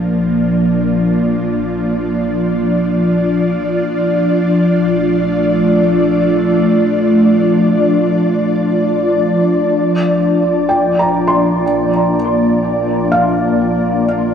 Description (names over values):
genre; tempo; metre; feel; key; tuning
ambient; free time; none; none; Bb major; A4 = 440 Hz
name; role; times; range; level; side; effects
ethereal airy pad; sustained chords; 0.0-14.3 s; F3 to D5; -12 LUFS; equal; ensemble chorus, built-in reverb
rich studio double bass section; bass; 0.0-14.3 s; Bb1; -32 LUFS; equal; tube saturation
felt-muted upright piano; arpeggios; 10.7-14.3 s; F5 to C6; -18 LUFS; equal; lush chorus, tape echo
room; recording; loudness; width
wet plate reverb, RT60 2.6 s; dreamy mix soaked in reverb, faint mains hum; -12 LUFS; side -8 dB against mid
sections
0.0-9.7 A section; 9.7-14.3 B section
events
fade-out on double bass section 0.0-9.7; fade-in on double bass section 9.7-14.3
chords
0.0 Bb; 3.9 Dm/Bb; 9.7 Bb